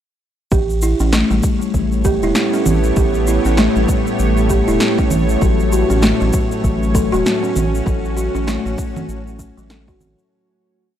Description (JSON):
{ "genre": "organic downtempo", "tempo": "98 BPM", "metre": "4/4", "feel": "swing 59% on 16ths", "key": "A mixolydian", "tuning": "A4 = 440 Hz", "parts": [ { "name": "bowed-like drone", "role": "sustained chords", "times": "1.7-10.3 s", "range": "A2 to C#5", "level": "-22 LUFS", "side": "equal", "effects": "built-in reverb, sidechain pumping" }, { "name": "buzzing kalimba", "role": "arpeggios", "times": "0.5-10.0 s", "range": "F#3 to A4", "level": "-18 LUFS", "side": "equal", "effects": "tape echo" }, { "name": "round analog bass", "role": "bass", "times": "0.5-10.2 s", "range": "E1 to A1", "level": "-19 LUFS", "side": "equal", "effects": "transformer saturation, sidechain pumping" }, { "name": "electronic kick drum", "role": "drums", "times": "0.5-10.0 s", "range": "none", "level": "-19 LUFS", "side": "equal", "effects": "overdrive" }, { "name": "electronic shaker, snare drum and congas", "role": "drums", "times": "0.5-10.3 s", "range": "none", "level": "-22 LUFS", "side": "right 1 dB", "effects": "overdrive" }, { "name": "quartz singing bowl", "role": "texture", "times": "5.4-10.3 s", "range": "F#3 to F#4", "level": "-28 LUFS", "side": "left 8 dB", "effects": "none" } ], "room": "light reverb", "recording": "dry, gritty hardware recording", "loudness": "-14 LUFS", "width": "side -10 dB against mid", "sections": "0.5-10.3 groove", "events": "fade-out 7.0-10.3", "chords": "0.5 A7; 5.4 F#m" }